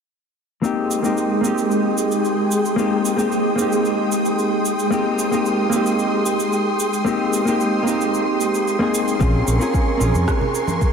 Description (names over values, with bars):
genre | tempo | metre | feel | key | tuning
sunset chillout | 112 BPM | 4/4 | straight | Ab major | A4 = 440 Hz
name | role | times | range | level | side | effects
hollow-body jazz guitar | accompaniment | 0.6-10.9 s | Bb3 to Ab4 | -20 LUFS | moving between left 5 dB and right 4 dB | auto-pan, vintage 12-bit sampler grit, low-pass filter, analog delay
soft string machine | sustained chords | 0.6-10.9 s | Ab3 to Eb6 | -21 LUFS | equal | ensemble chorus
electronic cabasa and rim click | drums | 0.6-10.9 s | none | -31 LUFS | right 3 dB | none
mellow fretless electric bass | bass | 9.2-10.2 s | Bb1 to F2 | -18 LUFS | equal | none
electronic kick drum | drums | 9.2-10.9 s | none | -20 LUFS | equal | none
congas | percussion | 9.2-10.8 s | none | -28 LUFS | right 3 dB | none
room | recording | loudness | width
wet huge ambient reverb, RT60 8.0 s | dreamy mix soaked in reverb | -17 LUFS | side -6 dB against mid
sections
0.6-10.9 A section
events
none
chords
0.6 Abmaj7; 9.2 Bbm9